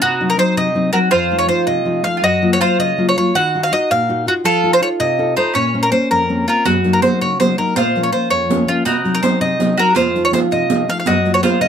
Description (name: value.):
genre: italian folk, Italian serenade.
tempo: 109 BPM (dotted quarters).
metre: 6/8.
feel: rubato.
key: unclear.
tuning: A4 = 439 Hz.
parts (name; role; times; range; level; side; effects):
bowl-back mandolin; melody; 0.0-11.7 s; F4 to Gb5; -16 LUFS; equal; none.
mandolin; second line; 0.0-11.7 s; Db4 to Gb4; -21 LUFS; right 3 dB; none.
nylon-string guitar; accompaniment; 0.0-11.7 s; F2 to F5; -18 LUFS; left 2 dB; none.
riq; percussion; 6.7-11.7 s; none; -21 LUFS; right 6 dB; none.
room: light reverb.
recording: close, detailed microphones.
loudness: -13 LUFS.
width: side -8 dB against mid.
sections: 0.0-6.7 A section; 6.7-11.7 A section.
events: none.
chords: 0.0 Cdim; 1.1 F7; 2.2 Gbmaj7; 3.3 Ebmadd9; 4.4 F7; 5.5 Bbmadd9; 6.7 Gb6; 7.8 Bbm; 8.9 Cdim; 10.0 F7; 11.1 Gbmaj7.